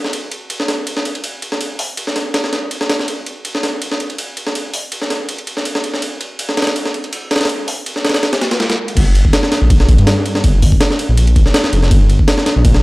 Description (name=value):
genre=drum and bass, jungle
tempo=163 BPM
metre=4/4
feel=swing 53% on 16ths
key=G minor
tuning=A4 = 441 Hz
part: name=jungle sampler-style drum kit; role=drums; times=0.0-12.8 s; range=crash cymbal, hi-hat, kick drum, ride cymbal, snare drum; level=-15 LUFS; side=equal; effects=overdrive, high-pass filter on snare, high-pass filter on cymbals, high-pass filter on hats, high-pass filter on kick, high-pass filter on room
part: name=detuned saw bass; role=bass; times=9.0-12.8 s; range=F1 to G2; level=-12 LUFS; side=equal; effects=none
room=little or no reverb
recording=dry, gritty hardware recording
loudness=-13 LUFS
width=side -22 dB against mid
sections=0.0-9.0 A section; 9.0-12.8 B section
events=drop 9.0-12.8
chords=none